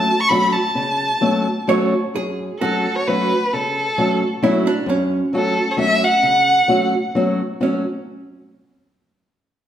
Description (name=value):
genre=musette waltz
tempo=132 BPM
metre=3/4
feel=rubato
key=F# minor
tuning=A4 = 439 Hz
part: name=rich violin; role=melody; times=0.0-7.2 s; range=A4 to C#6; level=-18 LUFS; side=equal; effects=none
part: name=archtop guitar, miked and amplified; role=second line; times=0.0-7.8 s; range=C#4 to C#5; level=-24 LUFS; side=right 3 dB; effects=none
part: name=fingerpicked steel-string acoustic guitar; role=accompaniment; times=0.0-7.8 s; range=F#2 to F#4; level=-20 LUFS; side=left 1 dB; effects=none
room=wet large studio reverb, RT60 1.4 s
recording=band playing live in one room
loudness=-16 LUFS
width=side -10 dB against mid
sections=0.0-2.2 A section; 2.2-7.6 B section; 7.6-9.0 C section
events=none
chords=0.0 F#m